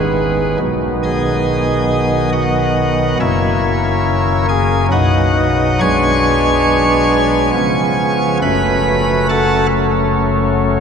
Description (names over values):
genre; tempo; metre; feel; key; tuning
classical, chorale-style piece for pipe organ; 69 BPM; 3/4; rubato; F# minor from 5.8 s; A4 = 438 Hz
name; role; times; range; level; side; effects
pipe organ, cornet; solo; 0.0-10.8 s; F#1 to C#6; -12 LUFS; equal; none
room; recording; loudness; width
wet cathedral reverb, RT60 6.6 s; none; -12 LUFS; side -6 dB against mid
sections
0.0-10.8 A section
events
none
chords
0.0 G#m; 0.6 B; 3.2 F#7; 4.9 B; 5.8 G#dim/B; 7.6 C#7; 8.4 F#m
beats
| 0.60 1.47 2.33 | 3.20 4.06 4.92 | 5.82 6.69 7.55 | 8.42 9.29 10.17